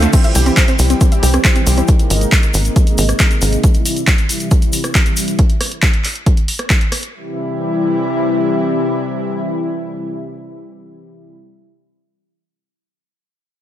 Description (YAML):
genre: uplifting trance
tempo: 137 BPM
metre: 4/4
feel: straight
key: C major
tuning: A4 = 442 Hz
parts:
  - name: lush unison pad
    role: sustained chords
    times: 0.0-11.4 s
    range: C3 to G4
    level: -19 LUFS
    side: left 1 dB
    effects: chorus, sidechain pumping
  - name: analog pluck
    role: arpeggios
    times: 0.0-1.8 s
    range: A3 to E5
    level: -20 LUFS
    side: equal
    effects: chorus, sidechain pumping, tape echo
  - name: tight sequencer bass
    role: bass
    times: 0.0-3.6 s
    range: Ab1 to C2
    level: -14 LUFS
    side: equal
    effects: sidechain pumping
  - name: punchy analog drum machine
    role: drums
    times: 0.0-7.1 s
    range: crash cymbal, handclaps, hi-hat, rim click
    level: -19 LUFS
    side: equal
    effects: overdrive
  - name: tube shaker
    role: percussion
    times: 0.0-5.4 s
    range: none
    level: -25 LUFS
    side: left 4 dB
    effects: none
  - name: electronic kick drum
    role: drums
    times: 0.1-6.8 s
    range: none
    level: -13 LUFS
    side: equal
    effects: overdrive
room: light reverb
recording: none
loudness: -12 LUFS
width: side -12 dB against mid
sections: 0.1-7.1 A section; 7.1-10.6 B section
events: filter sweep on synth arpeggio sound 0.1-1.9; filter sweep on analog synth pad 0.1-5.4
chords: 0.1 C; 1.9 Abadd9; 3.6 C; 5.4 N.C.; 7.1 C